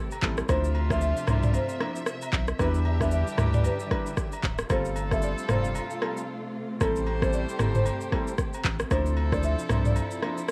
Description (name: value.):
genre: afrobeats.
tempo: 114 BPM.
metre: 4/4.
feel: swing 58% on 16ths.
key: unclear.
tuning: A4 = 439 Hz.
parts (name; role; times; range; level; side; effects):
marimba with soft mallets; melody; 0.0-10.5 s; A4 to E5; -35 LUFS; equal; cassette tape, tape echo.
clear horn section; second line; 0.0-10.5 s; C3 to C5; -40 LUFS; equal; cassette tape, tape echo.
dark studio string section; sustained chords; 0.0-10.5 s; C3 to E5; -40 LUFS; equal; cassette tape.
afro-pop drum kit; drums; 0.1-10.5 s; handclaps, kick drum, rim click, shaker, toms; -30 LUFS; equal; overdrive, cassette tape.
agogo bells; percussion; 0.1-10.4 s; none; -43 LUFS; equal; none.
clear baby grand piano; accompaniment; 0.2-10.4 s; F3 to E5; -36 LUFS; equal; cassette tape.
saturated sub bass; bass; 0.2-10.0 s; D1 to E2; -30 LUFS; equal; none.
room: small room ambience.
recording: home recording on cassette.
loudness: -27 LUFS.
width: mono.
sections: 0.0-10.5 A section.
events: break 6.3-6.8.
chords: 0.5 Dm9; 2.6 Em7; 4.7 G9sus4; 6.8 Am7; 8.9 Dm9.